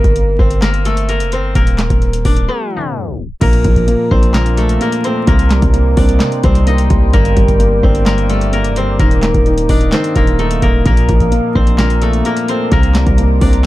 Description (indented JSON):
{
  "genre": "hip hop, trap",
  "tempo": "129 BPM",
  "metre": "4/4",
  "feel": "half-time",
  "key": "Bb major",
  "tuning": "A4 = 440 Hz",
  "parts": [
    { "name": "steel-string zither", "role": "melody", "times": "0.0-13.7 s", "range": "A3 to Eb5", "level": "-18 LUFS", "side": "equal", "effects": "low-pass filter, tape echo" },
    { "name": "hard-hitting 808-style bass", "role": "bass", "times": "0.0-13.6 s", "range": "Eb1 to C2", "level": "-14 LUFS", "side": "equal", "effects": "none" },
    { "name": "booming analog drum machine", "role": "drums", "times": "0.0-13.6 s", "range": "crash cymbal, handclaps, hi-hat, kick drum, snare drum", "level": "-14 LUFS", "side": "equal", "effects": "none" },
    { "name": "dark baby grand piano", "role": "accompaniment", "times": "3.4-13.7 s", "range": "G2 to Eb5", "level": "-17 LUFS", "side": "equal", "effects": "low-pass filter" },
    { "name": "deep dark ambient pad", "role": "sustained chords", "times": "3.9-13.7 s", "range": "Bb4 to Eb6", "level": "-26 LUFS", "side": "right 1 dB", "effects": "chorus, built-in reverb" }
  ],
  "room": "little or no reverb",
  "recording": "dark, warm production, vinyl crackle, tape stop",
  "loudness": "-10 LUFS",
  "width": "side -16 dB against mid",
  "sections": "0.0-3.4 A section; 3.4-13.7 B section",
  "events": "break 2.5-3.4; tape stop 2.5-3.4",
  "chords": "0.0 Gm; 1.6 Eb5; 3.4 Bbmaj7; 5.3 Cm7; 7.1 Gm; 9.0 Ebsus2; 10.9 Bbmaj7; 12.7 Cm7",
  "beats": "0.16 0.62 1.09 | 1.55 2.02 2.48 2.95 | 3.41 3.88 4.34 4.81 | 5.27 5.74 6.20 6.67 | 7.13 7.60 8.06 8.53 | 8.99 9.46 9.93 10.39 | 10.86 11.32 11.79 12.25 | 12.72 13.18 13.65"
}